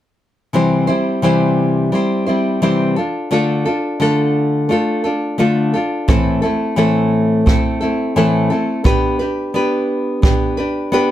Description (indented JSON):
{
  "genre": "acoustic pop",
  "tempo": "87 BPM",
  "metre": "4/4",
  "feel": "swing 55% on 16ths",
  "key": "C major",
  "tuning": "A4 = 440 Hz",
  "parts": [
    { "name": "nylon-string guitar", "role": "accompaniment", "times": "0.5-11.1 s", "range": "A2 to C5", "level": "-14 LUFS", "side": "left 1 dB", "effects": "none" },
    { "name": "kick drum", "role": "drums", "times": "6.1-10.4 s", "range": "none", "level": "-15 LUFS", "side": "right 1 dB", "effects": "none" }
  ],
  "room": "light reverb",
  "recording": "none",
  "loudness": "-14 LUFS",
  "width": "side -12 dB against mid",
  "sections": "0.5-11.1 A section",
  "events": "none",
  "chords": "0.5 C; 3.0 Dm; 6.1 Am; 8.8 G/B"
}